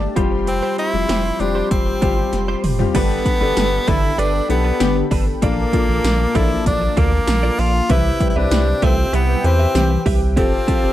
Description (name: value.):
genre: 1980s-style pop.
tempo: 97 BPM.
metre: 4/4.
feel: straight.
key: G mixolydian.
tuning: A4 = 441 Hz.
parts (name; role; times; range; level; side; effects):
edgy tenor saxophone; melody; 0.0-10.9 s; Bb3 to F4; -21 LUFS; equal; slapback echo.
warm baby grand piano; accompaniment; 0.0-10.9 s; G2 to B4; -23 LUFS; left 6 dB; none.
brassy analog pad; sustained chords; 0.0-10.9 s; Bb3 to D6; -29 LUFS; right 2 dB; chorus.
direct-recorded clean electric guitar; riff; 0.0-10.9 s; C4 to E5; -27 LUFS; right 5 dB; analog chorus, slapback echo.
round analog bass; bass; 0.0-10.9 s; F1 to E2; -20 LUFS; equal; none.
80s electronic pad drums; drums; 0.2-10.8 s; crash cymbal, hi-hat, kick drum, snare drum, tambourine, toms; -20 LUFS; equal; gated reverb on snare and toms, overdrive.
funky polysynth comp; stabs; 2.9-10.0 s; D3 to B4; -23 LUFS; left 1 dB; chorus.
room: little or no reverb.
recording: dry, close 1970s-style studio recording.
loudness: -15 LUFS.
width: side -13 dB against mid.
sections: 0.0-2.9 A section; 2.9-10.9 B section.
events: drum fill 2.3-2.9.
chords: 0.2 Fsus2; 2.9 Gadd9; 5.4 Bbmaj7; 7.9 Cmaj7; 10.4 Fadd9.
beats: | 0.47 1.09 1.71 2.33 | 2.95 3.57 4.18 4.80 | 5.42 6.04 6.66 7.28 | 7.90 8.51 9.13 9.75 | 10.37.